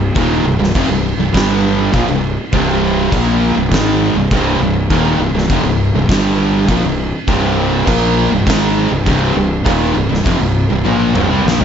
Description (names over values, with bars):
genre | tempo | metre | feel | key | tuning
stoner and doom metal | 101 BPM | 4/4 | straight | C minor | A4 = 441 Hz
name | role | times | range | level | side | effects
fuzz guitar | riff | 0.0-11.6 s | C2 to Bb3 | -15 LUFS | right 1 dB | distortion
thick fuzz guitar | riff | 0.0-11.6 s | C2 to Bb3 | -19 LUFS | equal | distortion
fuzz fingered electric bass | bass | 0.0-11.6 s | C1 to C2 | -18 LUFS | equal | overdrive
oversized low-tuned drum kit | drums | 0.2-11.6 s | crash cymbal, kick drum, snare drum, toms | -19 LUFS | equal | none
room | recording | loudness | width
little or no reverb | nothing above 7.6 kHz | -12 LUFS | side -8 dB against mid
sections
0.0-11.6 A section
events
drum fill 10.9-11.6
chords
0.0 Cm; 1.3 G5; 1.9 Cm; 6.1 G5; 6.7 Cm